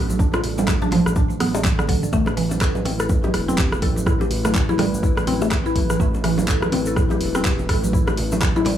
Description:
afro house; 124 BPM; 4/4; swing 59% on 16ths; A4 = 440 Hz
dark analog pad; sustained chords; 0.0-8.8 s; G3 to B4; -29 LUFS; left 2 dB; lush chorus, sidechain pumping
mallet-like synth pluck; arpeggios; 0.0-8.8 s; D3 to A4; -24 LUFS; equal; analog chorus, sidechain pumping, digital delay
smooth synth bass; bass; 0.0-8.7 s; E1 to A1; -26 LUFS; equal; sidechain pumping
congas; percussion; 0.1-8.8 s; -28 LUFS; right 5 dB
egg shaker; percussion; 0.1-8.6 s; -37 LUFS; left 3 dB
electronic kick drum; drums; 0.2-8.5 s; -21 LUFS; equal; small room ambience
deep house drum kit; drums; 0.3-8.8 s; handclaps, hi-hat, rim click; -26 LUFS; equal; small room ambience
bongos; percussion; 0.3-8.8 s; -29 LUFS; left 1 dB
little or no reverb; small room ambience; -17 LUFS; side -10 dB against mid
0.0-8.8 A section
0.0 Gsus2; 2.1 A5

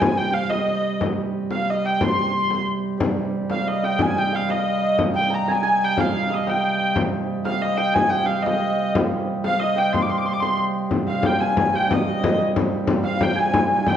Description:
medieval dance; 121 BPM (dotted quarters); 6/8; straight; C minor; A4 = 440 Hz
rich hurdy-gurdy; melody; 0.0-14.0 s; Eb5 to D6; -23 LUFS; left 1 dB
pipe organ, cornet; drone; 0.0-14.0 s; C3 to G3; -26 LUFS; right 4 dB
frame drum; percussion; 0.0-14.0 s; -24 LUFS; left 3 dB
hammered dulcimer; second line; 3.5-14.0 s; Eb5 to C6; -25 LUFS; equal
wet recital hall reverb, RT60 1.4 s; worn, warbling old tape, cassette tape, warbly pitch drift; -19 LUFS; side -9 dB against mid
0.0-3.0 A section; 3.0-10.9 A section; 10.9-14.0 B section

